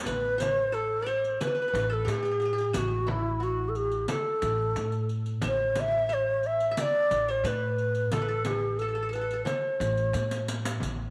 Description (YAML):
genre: Arabic maqam ensemble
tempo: 89 BPM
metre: 4/4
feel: straight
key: A maqam rast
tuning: A4 = 440 Hz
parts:
  - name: breathy reedy low ney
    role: melody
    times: 0.1-10.4 s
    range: E4 to E5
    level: -30 LUFS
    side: equal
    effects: none
  - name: qanun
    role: second line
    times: 0.1-10.5 s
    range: E4 to E5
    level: -41 LUFS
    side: equal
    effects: none
  - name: upright bass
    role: bass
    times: 0.1-11.1 s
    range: A1 to A2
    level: -35 LUFS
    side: equal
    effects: none
  - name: frame drum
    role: percussion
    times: 0.1-11.0 s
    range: none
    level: -39 LUFS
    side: equal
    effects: none
  - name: riq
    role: percussion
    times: 0.1-11.0 s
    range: none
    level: -41 LUFS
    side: equal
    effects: none
room: moderate echo chamber reverb, RT60 1.8 s, studio reverb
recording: none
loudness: -28 LUFS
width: mono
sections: 0.1-11.1 A section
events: drum fill 10.1-10.8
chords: none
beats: | 0.06 0.73 1.41 2.08 | 2.75 3.42 4.09 4.76 | 5.43 6.11 6.78 7.45 | 8.12 8.79 9.46 10.14 | 10.81